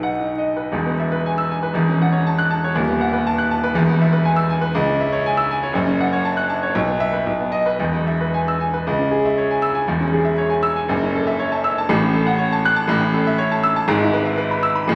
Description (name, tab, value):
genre	classical, virtuoso piano study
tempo	119 BPM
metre	2/4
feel	rubato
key	E major, C# minor from 8.9 s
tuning	A4 = 439 Hz
part	clear grand piano	solo	0.0-14.9 s	D#1 to F#6	-19 LUFS	equal	none
room	wet recital hall reverb, RT60 1.7 s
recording	vinyl crackle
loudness	-19 LUFS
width	mono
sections	0.7-8.9 A section; 8.9-14.9 B section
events	none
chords	0.0 B; 0.7 E; 1.7 F#m7/E; 2.7 B7/D#; 3.7 E; 4.7 C#m; 5.7 F#m; 6.7 E5/B; 7.3 B; 7.8 E; 8.9 C#m; 9.9 C#m/E; 10.9 F#m7; 11.9 F#m/A; 12.9 A; 13.9 E/G#